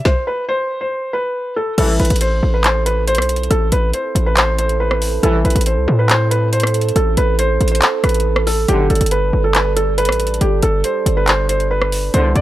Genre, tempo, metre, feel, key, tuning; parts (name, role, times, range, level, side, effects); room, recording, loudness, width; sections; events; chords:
hip hop, trap; 139 BPM; 4/4; half-time; A minor; A4 = 441 Hz
felt-muted upright piano; melody; 0.0-12.4 s; G4 to D5; -19 LUFS; equal; low-pass filter
trap drum kit; drums; 0.1-12.4 s; crash cymbal, handclaps, hi-hat, kick drum, rim click, snare drum; -19 LUFS; equal
mellow French horn section; sustained chords; 1.8-12.4 s; C3 to D5; -23 LUFS; right 10 dB; stereo widening
mellow brass ensemble; stabs; 1.8-2.1, 5.2-5.5, 8.7-9.0, 12.1-12.4 s; G1 to E3; -21 LUFS; right 1 dB
hard-hitting 808-style bass; bass; 1.8-12.4 s; G1 to A2; -16 LUFS; equal
little or no reverb; dry, gritty hardware recording; -14 LUFS; side -14 dB against mid
0.0-1.8 A section; 1.8-12.4 B section
stop 0.1-1.8
0.0 N.C.; 1.8 Am; 8.7 Gadd9